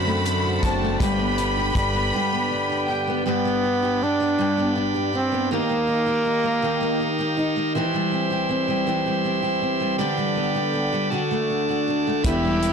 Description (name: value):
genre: six-eight pop ballad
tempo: 53 BPM (dotted quarters)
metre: 6/8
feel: straight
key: G major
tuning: A4 = 441 Hz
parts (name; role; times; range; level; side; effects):
- warm studio violin section; second line; 0.0-3.3, 12.2-12.7 s; G4 to B5; -26 LUFS; left 2 dB; none
- fingerpicked steel-string acoustic guitar; accompaniment; 0.0-12.7 s; E2 to G4; -24 LUFS; equal; double-tracked left and right
- bright tonewheel organ; sustained chords; 0.0-12.7 s; D3 to C6; -27 LUFS; right 1 dB; stopped rotary speaker
- fingered electric bass; bass; 0.0-2.1, 12.2-12.7 s; E1 to F#2; -26 LUFS; equal; none
- damped 70s drum kit; drums; 0.3-1.9, 12.2-12.7 s; hi-hat, kick drum; -25 LUFS; equal; soft clipping on kick
- breathy flugelhorn; melody; 3.3-7.4, 12.3-12.7 s; Bb3 to E4; -23 LUFS; right 1 dB; none
room: moderate echo chamber reverb, RT60 2.3 s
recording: blown-out, overdriven recording, overdrive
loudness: -20 LUFS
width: side -6 dB against mid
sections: 0.0-3.3 A section; 3.3-12.7 A section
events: none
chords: 0.0 D7; 1.0 G; 5.5 Ebadd9; 7.8 C/E; 10.0 G/D; 11.1 D